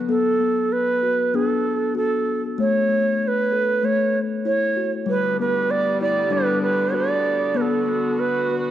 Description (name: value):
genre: world meditative, meditative tuned percussion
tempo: 97 BPM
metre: 4/4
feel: swing 56% on 16ths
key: B minor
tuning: A4 = 437 Hz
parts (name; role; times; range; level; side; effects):
- rich chamber string section; sustained chords; 0.0-0.1, 5.1-8.7 s; D3 to F#4; -28 LUFS; equal; cassette tape
- kalimba; arpeggios; 0.0-8.7 s; G3 to A4; -24 LUFS; left 6 dB; cassette tape
- Native American-style cedar flute; melody; 0.1-8.5 s; A4 to D5; -20 LUFS; right 4 dB; cassette tape, analog delay
room: moderate spring reverb, RT60 1.9 s, studio ambience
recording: home recording on cassette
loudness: -19 LUFS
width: side -11 dB against mid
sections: 0.1-8.7 A section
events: none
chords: 0.1 Bm; 2.6 A; 5.1 G; 7.5 Bm